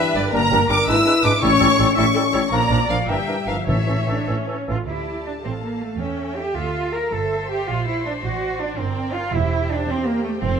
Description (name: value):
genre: quick classical-period movement for symphony orchestra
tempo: 108 BPM (dotted quarters)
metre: 6/8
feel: rubato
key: D minor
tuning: A4 = 443 Hz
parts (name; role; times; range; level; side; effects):
- rich studio violin section; melody; 0.0-10.6 s; D5 to E6; -27 LUFS; left 2 dB; none
- bright concert flute; second line; 0.0-4.3 s; D5 to E6; -26 LUFS; equal; none
- clear clarinet; second line; 0.0-4.8 s; C#4 to E4; -30 LUFS; left 2 dB; none
- rich chamber violin section; second line; 0.0-10.6 s; C5 to E6; -28 LUFS; equal; none
- warm oboe; second line; 0.0-4.8 s; A4 to B4; -29 LUFS; right 1 dB; none
- mellow bassoon; accompaniment; 0.0-4.8 s; E3 to G#3; -30 LUFS; right 1 dB; none
- rich chamber viola section; accompaniment; 0.0-10.6 s; G4 to E5; -28 LUFS; left 1 dB; none
- mellow French horn section; sustained chords; 0.0-4.3 s; D3 to E4; -22 LUFS; left 6 dB; none
- rich chamber cello section; bass; 0.2-10.6 s; G2 to Bb4; -25 LUFS; right 3 dB; none
- rich chamber double bass section; bass; 0.2-10.6 s; E1 to E2; -26 LUFS; right 4 dB; none
- timpani; percussion; 1.4-4.2 s; A2; -26 LUFS; left 2 dB; none
room: moderate concert hall reverb, RT60 2.1 s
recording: none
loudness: -18 LUFS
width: side -6 dB against mid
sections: 0.0-4.9 A section; 4.9-10.6 B section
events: none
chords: 0.3 Gm; 0.9 G#dim; 1.4 A7; 2.5 Bb; 3.1 Em7b5; 3.7 A; 4.9 Dm; 6.0 A7/E; 6.6 Dm; 7.1 Gm; 8.2 D7/A; 8.8 Gm; 9.3 C7/E